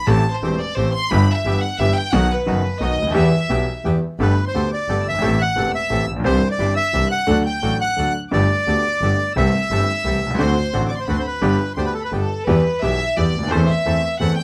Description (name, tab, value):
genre	tango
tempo	175 BPM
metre	3/4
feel	rubato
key	E minor, G major from 4.2 s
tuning	A4 = 440 Hz
part	warm studio violin section	second line	0.0-14.4 s	A4 to G6	-27 LUFS	equal	none
part	clear grand piano	accompaniment	0.1-14.3 s	E1 to A4	-24 LUFS	equal	none
part	bandoneon	stabs	0.1-14.3 s	A3 to C5	-33 LUFS	equal	none
part	clear double bass	bass	0.1-14.3 s	E1 to E2	-23 LUFS	equal	none
part	bandoneon	melody	4.2-12.1 s	A4 to G5	-24 LUFS	equal	none
room	light reverb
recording	close, detailed microphones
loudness	-19 LUFS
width	mono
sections	0.0-4.2 A section; 4.2-12.5 B section; 12.5-14.4 A section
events	violin section solo 0.0-4.2, 12.5-14.4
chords	0.1 Am7; 1.1 Em/G; 2.1 B; 3.1 Em; 4.2 Gadd9; 5.2 Am7; 6.2 Cadd9; 7.3 D; 8.3 Gadd9; 9.4 C6; 10.4 D7; 11.4 G; 12.5 Em; 13.5 Am/E